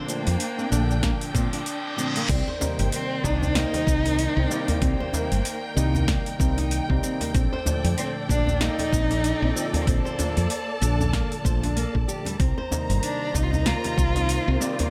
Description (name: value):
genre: organic downtempo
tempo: 95 BPM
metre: 4/4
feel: swing 58% on 16ths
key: C dorian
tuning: A4 = 440 Hz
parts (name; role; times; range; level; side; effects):
- dark cello; melody; 0.0-14.9 s; Bb3 to F4; -31 LUFS; equal; delay
- overdriven tine electric piano; accompaniment; 0.0-14.9 s; Bb2 to D5; -35 LUFS; equal; sidechain pumping, delay
- warm studio string section; sustained chords; 0.0-14.9 s; Eb3 to Bb5; -35 LUFS; equal; sidechain pumping
- flamenco guitar; arpeggios; 0.0-14.9 s; G3 to C5; -35 LUFS; equal; delay
- deep house drum kit; drums; 0.1-14.9 s; crash cymbal, hi-hat, shaker, snare drum; -33 LUFS; equal; overdrive, studio reverb
- woody fretless electric bass; bass; 0.3-14.6 s; G1 to Bb2; -26 LUFS; equal; tube saturation
- electronic kick drum; drums; 1.0-14.1 s; none; -29 LUFS; equal; overdrive, studio reverb
- reverse cymbal; sound effects; 1.3-2.3 s; none; -34 LUFS; equal; none
- bronze singing bowl; texture; 2.3-14.9 s; D5; -44 LUFS; equal; none
- djembe; percussion; 2.5-14.9 s; none; -33 LUFS; equal; none
room: light reverb, studio ambience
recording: none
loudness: -24 LUFS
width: mono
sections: 0.0-14.9 A section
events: reverse cymbal 1.3-2.3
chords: 0.0 Bbmaj7; 2.3 Cm7; 7.3 Bbmaj7; 12.4 Cm7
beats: 0.40 1.03 1.66 | 2.29 2.92 3.56 4.19 | 4.82 5.45 6.08 6.71 | 7.35 7.98 8.61 9.24 | 9.87 10.50 11.13 11.77 | 12.40 13.03 13.66 14.29